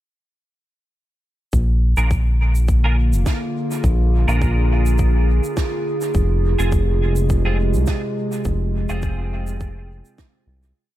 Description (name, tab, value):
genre	ambient dub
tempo	104 BPM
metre	4/4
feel	swing 55% on 16ths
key	F dorian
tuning	A4 = 440 Hz
part	warbly tape-like pad	sustained chords	2.3-10.8 s	C3 to Ab4	-24 LUFS	right 1 dB	chorus, built-in reverb
part	round analog bass	bass	1.5-10.7 s	F1 to C2	-17 LUFS	equal	none
part	electronic kick drum	drums	1.5-10.3 s	none	-21 LUFS	equal	none
part	shaker, snare drum and woodblock	drums	1.5-10.7 s	none	-34 LUFS	right 4 dB	dub echo
part	clean electric guitar	stabs	2.0-10.7 s	C4 to Bb4	-29 LUFS	right 2 dB	ensemble chorus, low-pass filter, dub echo
room	small room ambience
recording	echo-heavy mix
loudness	-16 LUFS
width	side -14 dB against mid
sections	1.5-10.8 groove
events	fade-out 7.7-10.8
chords	1.5 Bb7; 6.1 Fm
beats	| 1.53 2.11 2.68 3.26 | 3.84 4.42 4.99 5.57 | 6.15 6.72 7.30 7.88 | 8.45 9.03 9.61 10.18